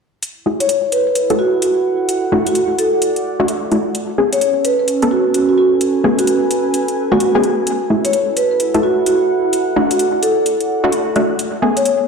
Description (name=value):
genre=UK garage, two-step garage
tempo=129 BPM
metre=4/4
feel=swing 63% on 16ths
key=A major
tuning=A4 = 439 Hz
part: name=electronic hi-hat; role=drums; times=0.2-12.0 s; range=none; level=-24 LUFS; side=equal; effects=overdrive
part: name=warbly tape-like pad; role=texture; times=0.9-12.1 s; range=B3 to G#5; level=-21 LUFS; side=right 1 dB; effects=chorus, built-in reverb
part: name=punchy chord stab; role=stabs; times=0.5-11.8 s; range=A3 to A4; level=-18 LUFS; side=left 1 dB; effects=chorus, tape echo
part: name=marimba with soft mallets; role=melody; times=0.6-11.9 s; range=F#4 to C#5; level=-16 LUFS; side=equal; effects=tape echo
room=wet lush hall reverb, RT60 1.8 s, digital ambience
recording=played on a big sound system in a bare room, large studio reverb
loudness=-13 LUFS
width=side -5 dB against mid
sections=0.2-12.1 A section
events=filter sweep on synth stab 0.2-12.1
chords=0.2 F#m9; 1.9 E9sus4; 3.9 Amaj9; 9.3 E9sus4; 11.4 Amaj9